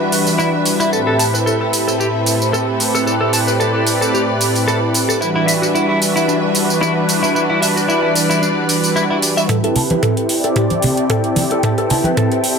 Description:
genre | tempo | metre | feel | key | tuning
nu-disco, nu disco | 112 BPM | 4/4 | swing 54% on 16ths | A dorian | A4 = 440 Hz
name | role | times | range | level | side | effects
warm analog pad | accompaniment | 0.0-12.6 s | A2 to D5 | -17 LUFS | equal | chorus, digital delay
rich studio string section | sustained chords | 0.0-12.6 s | C4 to G5 | -23 LUFS | left 1 dB | sidechain pumping, low-pass filter
pop drum kit | drums | 0.1-12.6 s | hi-hat, tambourine, toms | -20 LUFS | right 2 dB | overdrive
direct-recorded clean electric guitar | riff | 0.4-12.4 s | D4 to A5 | -20 LUFS | left 1 dB | lush chorus, low-pass filter, digital delay
electronic kick drum | drums | 9.5-12.3 s | none | -28 LUFS | right 1 dB | high-pass filter on kick
cabasa and congas | percussion | 9.5-12.6 s | none | -21 LUFS | right 3 dB | none
room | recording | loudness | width
light reverb, digital ambience | none | -13 LUFS | side -6 dB against mid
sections
0.0-9.5 A section; 9.5-12.6 B section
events
build-up 9.5-12.6; drum fill 9.5-12.6; filter sweep on string section 9.5-12.6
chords
0.0 Em7; 0.9 Am7; 5.2 Em7; 9.5 Am7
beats
0.39 | 0.93 1.46 2.00 2.53 | 3.07 3.60 4.14 4.68 | 5.21 5.75 6.28 6.82 | 7.35 7.89 8.43 8.96 | 9.50 10.03 10.57 11.10 | 11.64 12.18

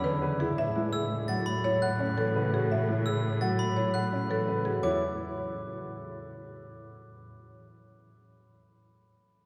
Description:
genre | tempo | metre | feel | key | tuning
classical, minimalist pattern music | 169 BPM | 6/4 | straight | E mixolydian | A4 = 442 Hz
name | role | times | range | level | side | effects
buzzing marimba with medium hard mallets | melody | 0.0-5.0 s | G#4 to F#5 | -35 LUFS | equal | none
Celtic harp | accompaniment | 0.0-7.0 s | C#3 to G#3 | -38 LUFS | equal | none
warm baby grand piano | arpeggios | 0.0-5.0 s | C#4 to B4 | -38 LUFS | equal | none
rich cello | bass | 0.0-5.0 s | E2 to A2 | -36 LUFS | equal | none
glockenspiel with brass mallets | arpeggios | 0.9-5.0 s | B5 to A6 | -39 LUFS | equal | none
room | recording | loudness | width
wet cathedral reverb, RT60 5.5 s | recorded in a church or concert hall | -29 LUFS | mono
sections
0.0-4.8 A section; 4.8-7.0 B section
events
none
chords
0.0 E13; 0.6 A69; 4.8 Eadd9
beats
0.22 | 0.57 0.93 1.28 1.64 1.99 2.35 | 2.70 3.06 3.41 3.77 4.12 4.48 | 4.83 5.19 5.54 5.90 6.25 6.61

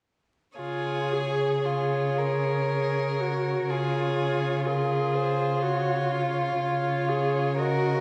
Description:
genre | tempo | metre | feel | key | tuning
classical, slow romantic movement for string quartet | 55-63 BPM | 3/4 | rubato | Db major | A4 = 441 Hz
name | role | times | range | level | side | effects
dark violin | melody | 0.6-8.0 s | Bb4 to Eb5 | -36 LUFS | equal | none
clear violin | second line | 0.6-8.0 s | F4 to Bb4 | -32 LUFS | equal | none
rich viola | accompaniment | 0.6-8.0 s | F4 to Ab4 | -31 LUFS | equal | none
clear cello | bass | 0.6-8.0 s | Db3 | -32 LUFS | equal | none
room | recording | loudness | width
wet scoring stage reverb, RT60 1.9 s | heard from further back in the room, vinyl crackle | -26 LUFS | mono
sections
0.6-8.0 A section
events
none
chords
0.6 Db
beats
| 0.58 1.66 2.69 | 3.70 4.66 5.63 | 6.61 7.59

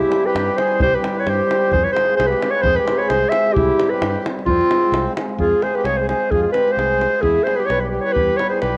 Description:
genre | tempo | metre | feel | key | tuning
balkan folk, Balkan wedding band | 130 BPM | 2/4 | swing 55% on 16ths | F hungarian minor | A4 = 439 Hz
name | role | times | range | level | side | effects
mellow clarinet | melody | 0.0-8.8 s | F4 to E5 | -20 LUFS | equal | none
accordion | second line | 0.0-8.8 s | C4 to C5 | -27 LUFS | equal | cassette tape
cimbalom | accompaniment | 0.1-8.8 s | G3 to Ab4 | -29 LUFS | equal | cassette tape
davul | percussion | 0.1-8.7 s | none | -29 LUFS | equal | none
modern bright fingered electric bass | bass | 0.3-8.8 s | B1 to G2 | -27 LUFS | equal | transformer saturation
room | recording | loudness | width
light reverb, small room ambience | home recording on cassette | -18 LUFS | mono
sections
0.0-5.4 A section; 5.4-8.8 B section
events
none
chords
0.0 C; 1.7 Fm; 3.5 C; 4.5 Fm; 7.2 Em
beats
0.33 | 0.79 1.25 | 1.71 2.17 | 2.63 3.09 | 3.55 4.01 | 4.47 4.93 | 5.39 5.85 | 6.31 6.78 | 7.24 7.70 | 8.16 8.62

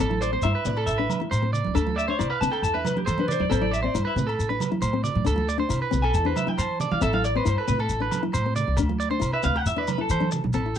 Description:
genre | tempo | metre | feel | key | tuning
highlife guitar band | 137 BPM | 4/4 | straight | A minor | A4 = 440 Hz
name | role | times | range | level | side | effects
nylon-string guitar | accompaniment | 0.0-10.8 s | C4 to F4 | -30 LUFS | left 10 dB | none
electric guitar at the edge of break-up | arpeggios | 0.0-10.8 s | A4 to D5 | -29 LUFS | right 5 dB | slapback echo
upright bass | bass | 0.0-10.8 s | A1 to E3 | -27 LUFS | equal | none
congas | percussion | 0.1-10.5 s | none | -30 LUFS | right 6 dB | none
clean electric guitar | melody | 0.2-10.4 s | E4 to A5 | -28 LUFS | left 1 dB | none
shekere | percussion | 0.2-10.8 s | none | -31 LUFS | left 2 dB | none
agogo bells | percussion | 0.4-10.7 s | none | -39 LUFS | left 5 dB | none
room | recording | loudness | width
light reverb | dry, close 1970s-style studio recording | -22 LUFS | side -9 dB against mid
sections
0.0-10.5 A section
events
clean electric guitar solo 0.0-10.5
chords
0.0 Am; 1.8 Dmadd9; 2.6 Esus4; 3.5 Am; 5.3 Dmadd9; 6.1 Esus4; 7.0 Am; 8.8 Dmadd9; 9.7 Esus4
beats
| 0.00 0.44 0.88 1.31 | 1.75 2.19 2.63 3.07 | 3.51 3.95 4.39 4.83 | 5.26 5.70 6.14 6.58 | 7.02 7.46 7.90 8.34 | 8.78 9.22 9.66 10.10 | 10.54

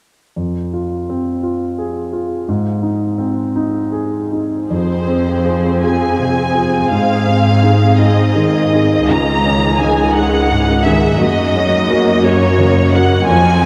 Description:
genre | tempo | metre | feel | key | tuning
cinematic, emotional film score for orchestra | 50-58 BPM (dotted quarters) | 6/8 | rubato | F phrygian | A4 = 440 Hz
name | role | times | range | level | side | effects
warm baby grand piano | accompaniment | 0.4-13.7 s | Db2 to Bb4 | -18 LUFS | equal | none
rich symphonic violin section | melody | 4.7-13.7 s | C5 to Bb5 | -19 LUFS | equal | none
warm symphonic viola section | accompaniment | 4.7-13.7 s | Eb3 to Ab4 | -22 LUFS | equal | none
rich symphonic cello section | bass | 4.7-13.7 s | Db2 to Ab2 | -19 LUFS | equal | none
room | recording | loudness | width
wet huge ambient reverb, RT60 8.8 s | in a vast, echoing space | -15 LUFS | mono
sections
0.4-4.7 A section; 4.7-13.7 B section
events
none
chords
0.4 Fm; 2.5 Ab; 4.7 Fm; 6.9 Ab; 9.1 Dbsus2; 11.2 Gb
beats
| 0.37 1.44 | 2.48 3.55 | 4.70 5.83 | 6.91 7.98 | 9.08 10.15 | 11.20 12.24 | 13.28

